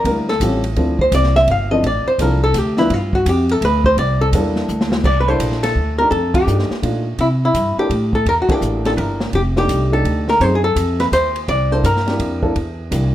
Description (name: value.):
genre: jazz, small-group swing and bop.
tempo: 168 BPM.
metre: 3/4.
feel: swing 65% on 8ths.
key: C mixolydian.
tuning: A4 = 440 Hz.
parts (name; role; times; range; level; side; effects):
archtop guitar, miked and amplified; melody; 0.0-13.1 s; E4 to F5; -17 LUFS; left 1 dB; none.
upright bass; bass; 0.0-13.1 s; F1 to C3; -18 LUFS; equal; none.
open jazz drum kit; drums; 0.0-13.0 s; crash cymbal, hi-hat, kick drum, ride cymbal, snare drum; -25 LUFS; equal; none.
dark baby grand piano; accompaniment; 0.1-13.1 s; F3 to B4; -22 LUFS; equal; none.
room: light reverb.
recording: none.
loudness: -14 LUFS.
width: side -12 dB against mid.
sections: 0.0-5.0 A section; 5.0-13.1 B section.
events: hollow-body jazz guitar solo 0.0-5.0; drum fill 4.7-5.0; band accent 6.3, 8.4.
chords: 0.4 A7alt; 0.8 Dm7; 2.9 G5; 4.0 C13; 6.1 F13; 7.2 C13; 9.3 F13; 10.4 F#dim7; 11.5 C13; 12.6 Em7b5.